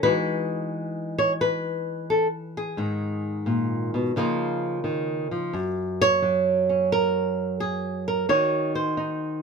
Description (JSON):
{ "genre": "solo jazz", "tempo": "87 BPM", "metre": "4/4", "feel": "swing 68% on 8ths", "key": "unclear", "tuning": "A4 = 441 Hz", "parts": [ { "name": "flamenco guitar", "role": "solo", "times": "0.0-9.4 s", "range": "F#2 to C#5", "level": "-22 LUFS", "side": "right 1 dB", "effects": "none" } ], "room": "little or no reverb", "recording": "close, detailed microphones", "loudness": "-23 LUFS", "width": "side -5 dB against mid", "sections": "0.0-9.4 A section", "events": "none", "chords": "0.0 Emaj9; 2.8 G#madd9; 4.1 C#69; 5.5 F#maj7; 8.3 D#m" }